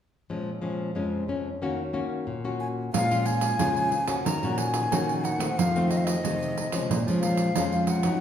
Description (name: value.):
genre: samba and choro.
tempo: 91 BPM.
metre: 4/4.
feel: straight.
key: Bb minor.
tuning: A4 = 439 Hz.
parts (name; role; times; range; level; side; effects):
nylon-string guitar; accompaniment; 0.3-8.2 s; F2 to Gb4; -29 LUFS; left 3 dB; none.
breathy hollow jazz flute; melody; 2.6-8.2 s; Eb5 to Bb5; -28 LUFS; left 1 dB; none.
nylon-string guitar; bass; 2.9-8.1 s; Bb2 to F3; -28 LUFS; right 1 dB; none.
pandeiro; percussion; 2.9-8.2 s; none; -30 LUFS; right 6 dB; none.
room: wet recital hall reverb, RT60 1.6 s.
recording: recorded in a church or concert hall.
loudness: -24 LUFS.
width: side -9 dB against mid.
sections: 0.3-2.9 A section; 2.9-8.2 B section.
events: none.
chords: 0.3 Bbm7; 1.6 Ebm7; 2.9 Bbm7; 4.3 Ebm7; 5.6 F7; 6.9 Bbm7.